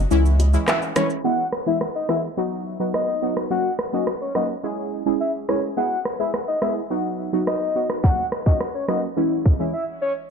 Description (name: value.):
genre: dancehall.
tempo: 106 BPM.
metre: 4/4.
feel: straight.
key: unclear.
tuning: A4 = 440 Hz.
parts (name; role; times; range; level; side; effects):
saturated sub bass; bass; 0.0-0.6 s; C#2; -16 LUFS; equal; none.
synth brass stab; accompaniment; 0.1-9.7 s; E3 to G#4; -24 LUFS; equal; chorus, phaser.
island pop drum kit; drums; 0.1-9.6 s; handclaps, hi-hat, kick drum, rim click, shaker; -23 LUFS; equal; none.
bongos; percussion; 0.4-1.1 s; none; -34 LUFS; left 6 dB; none.
soft octave-layered synth lead; melody; 0.7-10.1 s; C#5 to F#5; -26 LUFS; left 1 dB; chorus, ping-pong delay.
room: light reverb.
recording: dark, warm production, low-pass filter.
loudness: -20 LUFS.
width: side -6 dB against mid.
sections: 0.0-1.2 A section; 1.2-10.3 B section.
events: break 0.0-1.2, 9.7-10.3; filter sweep 1.2-10.3.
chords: 0.1 C#m; 1.2 E; 2.4 B; 3.5 F#; 4.6 C#m; 5.8 E; 6.9 B; 8.0 F#; 9.2 C#m.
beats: 0.11 0.68 | 1.25 1.81 2.38 2.94 | 3.51 4.08 4.64 5.21 | 5.77 6.34 6.91 7.47 | 8.04 8.60 9.17 9.73.